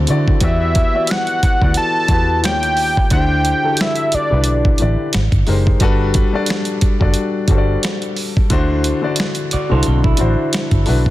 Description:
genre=R&B, neo-soul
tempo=89 BPM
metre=4/4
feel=swing 54% on 16ths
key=unclear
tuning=A4 = 440 Hz
part: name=electric guitar through a small old amp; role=second line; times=0.0-0.4, 9.5-11.0 s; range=C4 to D5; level=-24 LUFS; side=right 4 dB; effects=none
part: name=warm grand piano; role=accompaniment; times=0.0-11.1 s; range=D3 to D5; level=-20 LUFS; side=left 4 dB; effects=none
part: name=vintage muted fingered electric bass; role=bass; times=0.0-11.1 s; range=F#1 to D3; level=-17 LUFS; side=equal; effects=none
part: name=dusty soul sampler-style drum kit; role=drums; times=0.1-11.1 s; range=finger snaps, hi-hat, kick drum, snare drum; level=-17 LUFS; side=equal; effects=none
part: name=fat analog lead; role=melody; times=0.4-4.8 s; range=D5 to A5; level=-18 LUFS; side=right 1 dB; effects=none
room=little or no reverb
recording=dense, heavily limited modern master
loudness=-13 LUFS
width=side -16 dB against mid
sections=0.4-11.1 A section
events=none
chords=0.4 Em9; 2.4 Eb9; 3.1 D9sus4; 5.1 Abmaj9; 5.8 Gmaj9; 8.5 D9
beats=| 0.42 1.09 1.76 2.44 | 3.11 3.79 4.46 5.13 | 5.81 6.48 7.16 7.83 | 8.51 9.18 9.85 10.53

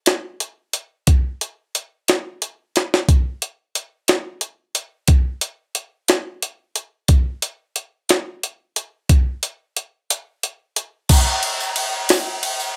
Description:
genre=rock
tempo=60 BPM (dotted quarters)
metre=6/8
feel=straight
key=none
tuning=none
part: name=jungle sampler-style drum kit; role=drums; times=0.1-12.6 s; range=crash cymbal, hi-hat, kick drum, ride cymbal, snare drum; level=-18 LUFS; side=equal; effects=none
part: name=tambourine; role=percussion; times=11.1-12.8 s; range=none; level=-29 LUFS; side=equal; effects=none
room=light reverb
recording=none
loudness=-22 LUFS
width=mono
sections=0.0-11.1 A section; 11.1-12.8 B section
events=drum fill 2.8-3.1; break 10.1-11.1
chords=none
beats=0.08 | 1.08 2.09 | 3.09 4.09 | 5.10 6.10 | 7.10 8.10 | 9.10 10.10 | 11.10 12.10

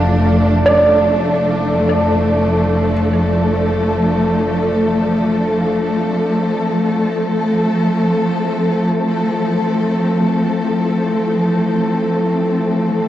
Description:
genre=ambient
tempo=free time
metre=none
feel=none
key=F major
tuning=A4 = 442 Hz
part: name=warm symphonic string section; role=sustained chords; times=0.0-13.1 s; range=E3 to A4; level=-14 LUFS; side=equal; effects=none
part: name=felt-muted upright piano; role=arpeggios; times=0.0-13.1 s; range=D5 to F5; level=-19 LUFS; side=right 2 dB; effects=ping-pong delay, shimmer reverb
part: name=rich studio double bass section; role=bass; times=0.0-5.6 s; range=F1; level=-21 LUFS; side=equal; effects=tube saturation
room=wet concert hall reverb, RT60 2.0 s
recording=worn, warbling old tape, cassette tape, warbly pitch drift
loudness=-14 LUFS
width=side -12 dB against mid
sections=0.0-5.6 A section; 5.6-13.1 B section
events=none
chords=0.0 Dmadd9/F; 5.6 Fmaj7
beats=free time

